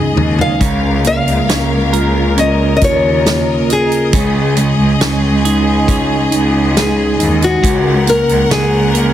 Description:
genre	pop ballad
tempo	69 BPM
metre	4/4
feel	straight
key	unclear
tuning	A4 = 440 Hz
part	nylon-string guitar	melody	0.0-9.1 s	Gb4 to F5	-16 LUFS	left 2 dB	none
part	mellow tine electric piano	accompaniment	0.0-9.1 s	Db3 to F4	-16 LUFS	right 2 dB	medium stereo tremolo
part	bright studio string section	sustained chords	0.0-9.1 s	Ab4 to Gb5	-20 LUFS	left 3 dB	none
part	clear studio cello section	bass	0.0-9.1 s	Db2 to Eb2	-16 LUFS	equal	none
part	natural country drum kit	drums	0.2-9.1 s	hi-hat, kick drum, snare drum, toms	-17 LUFS	equal	none
part	twelve-string electric guitar	arpeggios	0.6-9.1 s	Db3 to Bb4	-23 LUFS	right 5 dB	ping-pong delay
room	light reverb, small room reverb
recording	heavily compressed radio sound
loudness	-10 LUFS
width	side -11 dB against mid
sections	0.0-9.1 A section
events	drum fill 0.0-0.6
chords	0.0 Absus4/Db; 0.6 Bbm/Db; 4.1 Absus4/Db; 7.6 Gb/Db

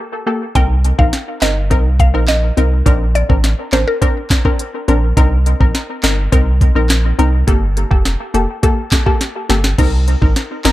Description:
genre	dancehall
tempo	104 BPM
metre	4/4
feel	straight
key	C dorian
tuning	A4 = 436 Hz
part	punchy chord stab	accompaniment	0.0-10.7 s	Bb3 to Bb4	-19 LUFS	left 2 dB	chorus, dub echo
part	mallet-like synth pluck	melody	0.6-4.0 s	Bb4 to G5	-21 LUFS	equal	chorus, dub echo
part	punchy sub bass	bass	0.6-10.7 s	F1 to C2	-14 LUFS	equal	none
part	afro-pop drum kit	drums	0.6-10.7 s	crash cymbal, handclaps, hi-hat, kick drum, rim click, snare drum	-14 LUFS	equal	none
room	little or no reverb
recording	echo-heavy mix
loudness	-12 LUFS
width	side -16 dB against mid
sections	0.0-9.8 A section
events	drum fill 9.2-9.8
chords	0.0 Gmadd9; 0.6 Cm7; 2.9 Bbadd9; 5.2 Cm7; 7.5 Gmadd9; 9.8 Cm7

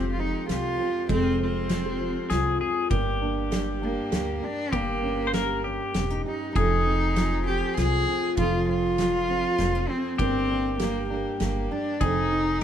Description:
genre	acoustic folk-pop ballad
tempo	99 BPM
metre	3/4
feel	straight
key	F minor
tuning	A4 = 442 Hz
part	warm cello	melody	0.0-12.6 s	Bb3 to Ab4	-28 LUFS	equal	none
part	pedal steel guitar	second line	0.0-12.6 s	G4 to C5	-32 LUFS	left 4 dB	none
part	nylon-string guitar	accompaniment	0.0-12.6 s	F2 to Bb4	-30 LUFS	left 1 dB	none
part	felt-muted upright piano	arpeggios	0.0-12.6 s	F3 to G4	-32 LUFS	right 6 dB	none
part	upright bass	bass	0.0-12.6 s	E1 to D2	-30 LUFS	equal	none
part	loose indie drum kit	drums	0.5-12.6 s	kick drum, ride cymbal, snare drum	-33 LUFS	equal	none
room	light reverb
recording	minimal, uncompressed stereo recording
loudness	-23 LUFS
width	side -9 dB against mid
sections	0.0-12.6 A section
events	none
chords	0.0 Fmadd9; 2.9 Gm; 4.7 Eb7/G; 6.6 Fm; 10.2 Gm; 12.0 Fm7

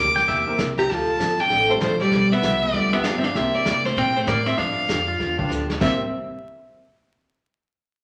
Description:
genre	country, western swing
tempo	195 BPM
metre	4/4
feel	swing 62% on 8ths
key	C mixolydian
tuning	A4 = 440 Hz
part	bright fiddle	melody	0.0-6.0 s	C5 to D6	-24 LUFS	equal	none
part	vintage hollow-body jazz guitar	second line	0.0-6.0 s	F3 to Bb4	-27 LUFS	equal	none
part	picked steel-string acoustic guitar	accompaniment	0.0-6.0 s	C3 to A4	-32 LUFS	equal	none
part	upright bass	bass	0.0-6.0 s	G1 to C3	-34 LUFS	equal	none
part	pedal steel guitar	second line	0.2-0.6, 5.1-6.0 s	C4 to G5	-30 LUFS	equal	none
part	vintage brush drum kit	drums	0.2-6.1 s	brushed snare drum, crash cymbal, hi-hat, kick drum, snare drum	-31 LUFS	equal	none
part	clear upright piano	accompaniment	0.5-6.0 s	G3 to Bb4	-34 LUFS	equal	none
room	wet large studio reverb, RT60 1.2 s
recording	vinyl crackle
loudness	-21 LUFS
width	mono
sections	0.0-5.8 A section; 5.8-7.0 B section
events	drum fill 5.5-5.8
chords	0.0 C7; 0.9 Dm7; 2.1 G7; 3.3 C7; 4.6 G7; 5.8 C7

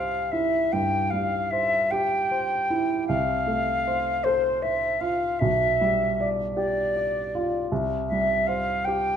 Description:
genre	classical, romantic duo for flute and grand piano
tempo	52 BPM (dotted quarters)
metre	12/8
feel	rubato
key	C major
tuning	A4 = 440 Hz
part	silver concert flute	melody	0.0-9.2 s	C5 to G5	-24 LUFS	left 1 dB	none
part	warm grand piano	accompaniment	0.0-9.2 s	B1 to D5	-27 LUFS	right 2 dB	none
room	moderate recital hall reverb, RT60 1.5 s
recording	minimal, uncompressed stereo recording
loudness	-22 LUFS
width	side -8 dB against mid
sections	0.0-9.2 A section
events	none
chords	0.0 C; 3.1 F/C; 5.4 G7/B; 7.7 C

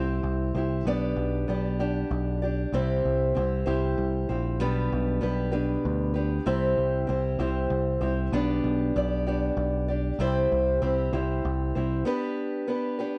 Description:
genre	folk rock and heartland rock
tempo	64 BPM (dotted quarters)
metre	6/8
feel	straight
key	G major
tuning	A4 = 441 Hz
part	picked acoustic archtop guitar	accompaniment	0.0-13.2 s	B2 to D5	-29 LUFS	equal	none
part	picked electric bass	bass	0.0-12.0 s	Bb1 to D2	-30 LUFS	equal	none
room	light reverb, small room ambience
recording	nothing above 10.5 kHz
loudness	-27 LUFS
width	mono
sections	0.0-13.2 A section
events	break 12.1-13.2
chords	0.0 C; 0.9 G/B; 2.7 C; 4.6 G/B; 6.5 C; 8.3 G/B; 10.2 C; 12.1 G/B

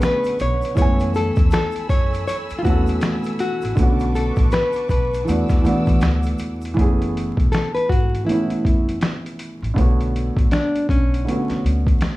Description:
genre	lo-fi hip hop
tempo	80 BPM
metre	4/4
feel	swing 60% on 16ths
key	F# minor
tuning	A4 = 436 Hz
part	nylon-string guitar	melody	0.0-12.2 s	C#4 to C#5	-24 LUFS	left 2 dB	analog delay, plate reverb
part	dark upright piano	accompaniment	0.0-12.2 s	D3 to G#5	-23 LUFS	right 1 dB	cassette tape, plate reverb
part	warm studio string section	sustained chords	0.0-6.8 s	A4 to E6	-34 LUFS	equal	plate reverb
part	dusty soul sampler-style drum kit	drums	0.0-12.2 s	finger snaps, hi-hat, kick drum, snare drum	-19 LUFS	equal	none
part	egg shaker	percussion	0.0-6.8 s	none	-52 LUFS	left 9 dB	none
part	upright bass	bass	0.4-12.0 s	E1 to E3	-23 LUFS	equal	none
room	light reverb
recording	vinyl crackle, studio reverb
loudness	-17 LUFS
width	side -18 dB against mid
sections	0.0-6.8 A section; 6.8-12.2 B section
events	none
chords	0.0 Bm9; 0.8 F#m11; 3.8 Bm9; 5.3 E9sus4; 6.8 F#m11; 9.8 Bm9

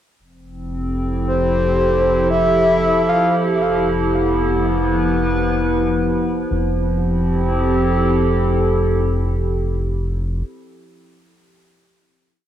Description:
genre	ambient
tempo	57 BPM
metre	3/4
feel	straight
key	F lydian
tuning	A4 = 437 Hz
part	warbly tape-like pad	sustained chords	0.6-10.4 s	F3 to B4	-18 LUFS	equal	chorus, built-in reverb, cassette tape, plate reverb
part	round analog bass	bass	0.2-10.4 s	F1	-22 LUFS	equal	none
part	breathy flute-like synth lead	melody	1.3-3.4 s	C5 to F5	-18 LUFS	left 1 dB	chorus, plate reverb, tape echo
room	wet booth ambience, RT60 0.3 s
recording	home recording on cassette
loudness	-16 LUFS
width	side -10 dB against mid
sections	0.2-6.5 A section; 6.5-9.7 final chord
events	none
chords	0.2 Fmaj7; 3.3 Em/F; 6.5 Fmaj7

